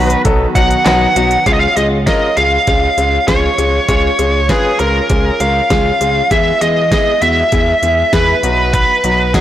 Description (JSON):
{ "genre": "synth-pop", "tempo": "99 BPM", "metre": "4/4", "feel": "straight", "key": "unclear", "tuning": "A4 = 440 Hz", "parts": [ { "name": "bluesy overdriven lead guitar", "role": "melody", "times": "0.0-9.4 s", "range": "G#4 to F#5", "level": "-13 LUFS", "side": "right 1 dB", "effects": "distortion" }, { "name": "warm concert grand piano", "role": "accompaniment", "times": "0.0-9.4 s", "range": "F#3 to B4", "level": "-17 LUFS", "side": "left 2 dB", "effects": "none" }, { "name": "phased analog pad", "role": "sustained chords", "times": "0.0-1.4 s", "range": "D#3 to F#4", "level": "-24 LUFS", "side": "right 1 dB", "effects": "phaser, chorus" }, { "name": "smooth gliding synth bass", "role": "bass", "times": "0.0-9.4 s", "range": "B1 to E2", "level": "-18 LUFS", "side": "equal", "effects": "none" }, { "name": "pop drum kit", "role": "drums", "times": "0.1-9.4 s", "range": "handclaps, hi-hat, kick drum, snare drum", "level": "-18 LUFS", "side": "equal", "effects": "none" } ], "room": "moderate concert hall reverb, RT60 2.3 s", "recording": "blown-out, overdriven recording, overdrive", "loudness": "-10 LUFS", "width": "side -12 dB against mid", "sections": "0.0-1.5 A section; 1.5-9.4 B section", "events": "none", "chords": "0.0 B; 1.5 C#; 6.3 E; 8.4 B", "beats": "0.25 0.86 | 1.46 2.07 2.67 3.28 | 3.89 4.49 5.10 5.71 | 6.31 6.92 7.52 8.13 | 8.73 9.34" }